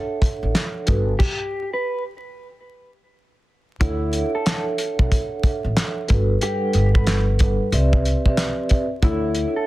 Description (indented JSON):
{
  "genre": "hip hop, boom-bap hip-hop",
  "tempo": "92 BPM",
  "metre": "4/4",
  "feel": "swing 63% on 16ths",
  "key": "D major",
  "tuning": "A4 = 441 Hz",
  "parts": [
    { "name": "vibraphone with soft mallets", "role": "accompaniment", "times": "0.0-9.7 s", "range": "G3 to F#5", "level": "-24 LUFS", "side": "right 2 dB", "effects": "cassette tape, high-pass filter, low-pass filter, plate reverb" },
    { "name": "cloth-damped thuddy drum kit", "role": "drums", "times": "0.2-9.5 s", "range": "crash cymbal, handclaps, hi-hat, kick drum, snare drum", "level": "-20 LUFS", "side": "equal", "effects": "none" },
    { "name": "upright bass", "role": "bass", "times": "0.4-9.4 s", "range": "G1 to D2", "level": "-21 LUFS", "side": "equal", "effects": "none" },
    { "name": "mellow electric guitar", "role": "melody", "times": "1.2-9.7 s", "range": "E4 to B4", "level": "-27 LUFS", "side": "left 2 dB", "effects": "lush chorus, high-pass filter, low-pass filter, plate reverb, digital delay" }
  ],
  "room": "light reverb",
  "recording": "dense, heavily limited modern master, vinyl crackle",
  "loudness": "-18 LUFS",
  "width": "side -17 dB against mid",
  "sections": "0.0-3.8 A section; 3.8-9.7 A section",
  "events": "stop 1.2-3.8",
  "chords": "0.0 Dmaj9; 0.9 Gmaj9; 2.5 N.C.; 3.8 Dmaj9; 6.1 Gmaj9; 7.7 Cmaj9; 9.0 Dmaj9"
}